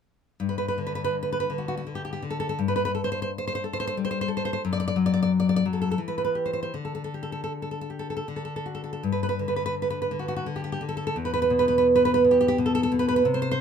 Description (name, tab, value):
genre	romantic piece for solo classical guitar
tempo	76-92 BPM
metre	3/4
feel	rubato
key	G major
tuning	A4 = 442 Hz
part	nylon-string guitar	solo	0.4-13.6 s	E2 to D5	-23 LUFS	equal	none
room	light reverb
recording	minimal, uncompressed stereo recording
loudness	-23 LUFS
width	side -7 dB against mid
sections	0.4-13.6 A section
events	none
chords	0.4 G5; 2.6 Gsus24; 4.6 N.C.; 6.0 Em; 6.7 Dsus4; 8.3 D; 9.0 G5; 11.2 E5